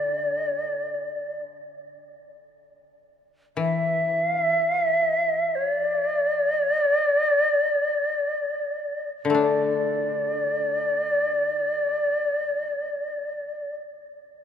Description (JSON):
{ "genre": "japanese traditional, Japanese chamber music", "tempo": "free time", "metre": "none", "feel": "none", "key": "unclear", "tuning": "A4 = 440 Hz", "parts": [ { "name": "breathy shakuhachi", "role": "melody", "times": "0.0-13.7 s", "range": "D5 to E5", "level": "-23 LUFS", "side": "equal", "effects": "none" }, { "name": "koto", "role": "accompaniment", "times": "0.0-13.8 s", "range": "D3 to D4", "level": "-27 LUFS", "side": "left 4 dB", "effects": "none" } ], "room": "moderate cathedral reverb, RT60 4.9 s", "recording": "minimal, uncompressed stereo recording", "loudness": "-22 LUFS", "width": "side -8 dB against mid", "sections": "0.0-9.4 A section; 9.4-14.4 B section", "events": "slowing down 0.0-9.4", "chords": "none", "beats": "free time" }